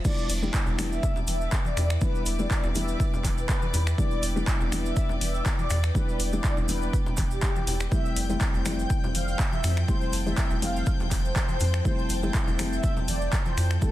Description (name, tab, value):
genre	deep house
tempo	122 BPM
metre	4/4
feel	swing 54% on 16ths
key	E phrygian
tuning	A4 = 439 Hz
part	mellow horn-like synth lead	melody	0.0-13.9 s	G4 to G5	-35 LUFS	left 1 dB	ensemble chorus, tape echo
part	felt-muted upright piano	stabs	0.0-13.9 s	G3 to E4	-33 LUFS	left 2 dB	sidechain pumping, tape echo
part	electronic kick drum	drums	0.0-13.9 s	none	-26 LUFS	equal	overdrive
part	cabasa	percussion	0.0-13.9 s	none	-41 LUFS	right 4 dB	none
part	congas	percussion	0.0-13.9 s	none	-38 LUFS	left 3 dB	none
part	airy breathy pad	texture	0.0-13.9 s	F3 to A5	-38 LUFS	equal	chorus, phaser, sidechain pumping
part	clear chamber violin section	texture	0.0-13.9 s	D5 to G6	-40 LUFS	left 3 dB	sidechain pumping
part	deep house drum kit	drums	0.1-13.8 s	crash cymbal, finger snaps, handclaps, hi-hat	-33 LUFS	equal	overdrive
part	warm sub bass	bass	0.3-13.8 s	E1 to F2	-28 LUFS	equal	sidechain pumping
room	small room ambience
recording	dense, heavily limited modern master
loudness	-23 LUFS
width	side -15 dB against mid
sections	0.0-13.9 A section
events	none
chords	0.0 Em7; 7.9 Fmaj9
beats	| 0.05 0.54 1.03 1.52 | 2.02 2.51 3.00 3.49 | 3.98 4.47 4.97 5.46 | 5.95 6.44 6.93 7.43 | 7.92 8.41 8.90 9.39 | 9.88 10.38 10.87 11.36 | 11.85 12.34 12.84 13.33 | 13.82